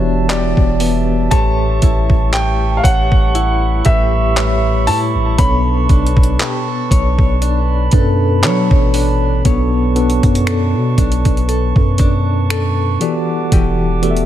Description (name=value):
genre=contemporary R&B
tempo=59 BPM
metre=4/4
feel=swing 54% on 16ths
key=B minor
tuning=A4 = 440 Hz
part: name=mellow tine electric piano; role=accompaniment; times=0.0-14.3 s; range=A2 to E5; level=-19 LUFS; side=equal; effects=medium stereo tremolo
part: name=glass harmonica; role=sustained chords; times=0.0-14.3 s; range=G3 to D6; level=-24 LUFS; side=right 6 dB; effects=sidechain pumping
part: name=direct-recorded clean electric guitar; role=arpeggios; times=0.0-14.3 s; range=E3 to C#5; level=-23 LUFS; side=left 8 dB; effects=tremolo, tape echo
part: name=long sustained 808-style bass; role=bass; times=0.0-14.3 s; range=E1 to F#3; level=-16 LUFS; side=equal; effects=none
part: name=warm concert grand piano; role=melody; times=0.3-8.4 s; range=D5 to B5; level=-21 LUFS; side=equal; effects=tape echo
part: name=detuned 8-bit digital drum machine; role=drums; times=0.3-14.3 s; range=finger snaps, handclaps, hi-hat, kick drum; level=-15 LUFS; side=equal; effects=none
part: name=worn celesta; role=texture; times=1.3-4.7 s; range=G4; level=-33 LUFS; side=right 4 dB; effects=none
room=digital ambience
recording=none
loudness=-12 LUFS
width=side -12 dB against mid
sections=0.0-9.5 A section; 9.5-14.3 B section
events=none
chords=0.0 Em7; 1.3 A7; 5.4 Bm9; 13.0 Em11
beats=0.30 | 1.32 2.33 3.35 4.37 | 5.38 6.40 7.42 8.44 | 9.45 10.47 11.49 12.50 | 13.52